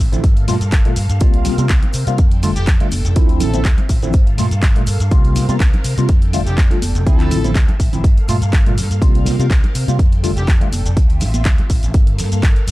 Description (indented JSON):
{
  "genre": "filtered disco house",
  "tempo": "123 BPM",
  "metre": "4/4",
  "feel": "swing 54% on 16ths",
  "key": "G dorian",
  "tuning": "A4 = 440 Hz",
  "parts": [
    { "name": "phased string machine", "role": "sustained chords", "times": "0.0-12.7 s", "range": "F3 to G5", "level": "-31 LUFS", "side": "equal", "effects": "ensemble chorus, phaser, sidechain pumping" },
    { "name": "overdriven fingered electric bass", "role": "bass", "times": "0.0-12.7 s", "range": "F1 to C3", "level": "-18 LUFS", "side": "equal", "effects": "sidechain pumping" },
    { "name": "punchy analog drum machine", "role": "drums", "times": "0.0-12.7 s", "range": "handclaps, hi-hat, shaker", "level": "-26 LUFS", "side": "equal", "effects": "sidechain pumping on hats, sidechain pumping on perc" },
    { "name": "tine electric piano", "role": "accompaniment", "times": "0.1-10.7 s", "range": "Bb2 to F4", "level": "-20 LUFS", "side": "equal", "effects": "fast stereo tremolo, phaser, sidechain pumping" },
    { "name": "electronic kick drum", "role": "drums", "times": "0.2-12.5 s", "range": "none", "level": "-13 LUFS", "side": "equal", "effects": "none" },
    { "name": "maracas and congas", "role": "percussion", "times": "1.2-12.7 s", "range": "none", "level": "-27 LUFS", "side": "right 1 dB", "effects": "sidechain pumping on perc" },
    { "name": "brilliant horn section", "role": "melody", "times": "2.6-10.5 s", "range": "G4 to A4", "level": "-31 LUFS", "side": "equal", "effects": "vintage 12-bit sampler grit, sidechain pumping, tape echo" }
  ],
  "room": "digital ambience",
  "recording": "dry, gritty hardware recording",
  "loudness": "-12 LUFS",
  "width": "side -18 dB against mid",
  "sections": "0.0-12.7 A section",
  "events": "none",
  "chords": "0.2 Gm9; 1.2 C7sus4; 2.2 F69; 3.2 Dm9; 4.1 Gm9; 5.1 C7sus4; 6.1 F69; 7.1 Dm9; 8.0 Gm9; 9.0 C7sus4; 10.0 F69; 11.0 Dm9; 11.9 Gm9"
}